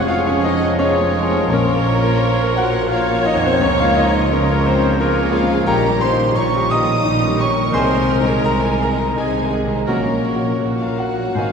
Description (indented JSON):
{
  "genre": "classical, romantic movement for piano and orchestra",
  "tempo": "86 BPM",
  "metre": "3/4",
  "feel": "uneven beats, rubato",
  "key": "unclear",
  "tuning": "A4 = 440 Hz",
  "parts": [
    { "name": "clear concert grand piano", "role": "melody", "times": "0.0-11.5 s", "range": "Bb1 to Eb6", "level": "-18 LUFS", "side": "left 2 dB", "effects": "none" },
    { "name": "rich studio violin section", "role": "melody", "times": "0.0-11.5 s", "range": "Bb4 to Eb6", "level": "-31 LUFS", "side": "left 2 dB", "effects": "none" },
    { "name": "bright oboe", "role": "second line", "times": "0.0-11.5 s", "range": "Bb4 to Db5", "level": "-32 LUFS", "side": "right 1 dB", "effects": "none" },
    { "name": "clear studio violin section", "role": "second line", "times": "0.0-11.5 s", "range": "Bb3 to C5", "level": "-28 LUFS", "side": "equal", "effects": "none" },
    { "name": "dark clarinet", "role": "second line", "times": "0.0-11.5 s", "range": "F4 to Ab4", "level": "-32 LUFS", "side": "left 2 dB", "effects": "none" },
    { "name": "silver concert flute", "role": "second line", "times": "0.0-11.5 s", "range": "Ab5 to Db6", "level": "-32 LUFS", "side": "left 1 dB", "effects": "none" },
    { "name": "bright studio viola section", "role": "accompaniment", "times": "0.0-11.5 s", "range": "Eb4 to Db5", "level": "-25 LUFS", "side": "right 1 dB", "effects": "none" },
    { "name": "mellow bassoon", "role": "accompaniment", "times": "0.0-11.5 s", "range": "Eb3 to Gb3", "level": "-29 LUFS", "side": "right 1 dB", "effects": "none" },
    { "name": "dark French horn section", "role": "sustained chords", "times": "0.0-11.5 s", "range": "Bb3 to Eb5", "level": "-26 LUFS", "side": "left 3 dB", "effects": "none" },
    { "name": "mellow trombone section", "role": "sustained chords", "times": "0.0-11.5 s", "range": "Eb3 to Db4", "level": "-27 LUFS", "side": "right 3 dB", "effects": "none" },
    { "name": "warm trumpet section", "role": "stabs", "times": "0.0-11.5 s", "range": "Bb4 to Eb6", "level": "-26 LUFS", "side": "right 2 dB", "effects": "none" },
    { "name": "mellow tuba", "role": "bass", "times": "0.0-11.5 s", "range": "F1 to Db2", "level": "-26 LUFS", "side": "right 2 dB", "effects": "none" },
    { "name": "warm studio cello section", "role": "bass", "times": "0.0-11.5 s", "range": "F2 to Db3", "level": "-28 LUFS", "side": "right 2 dB", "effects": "none" },
    { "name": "warm studio double bass section", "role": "bass", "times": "0.0-11.5 s", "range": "F1 to Db2", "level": "-26 LUFS", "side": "right 3 dB", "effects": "none" }
  ],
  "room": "wet church reverb, RT60 3.3 s",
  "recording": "none",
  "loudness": "-14 LUFS",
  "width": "side -6 dB against mid",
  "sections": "0.0-11.5 A section",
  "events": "none",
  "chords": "0.0 Db/F; 1.5 Bbm; 3.6 Bbm/Db; 5.7 Eb7/Bb; 7.7 Ab/C; 9.9 Gb/Bb"
}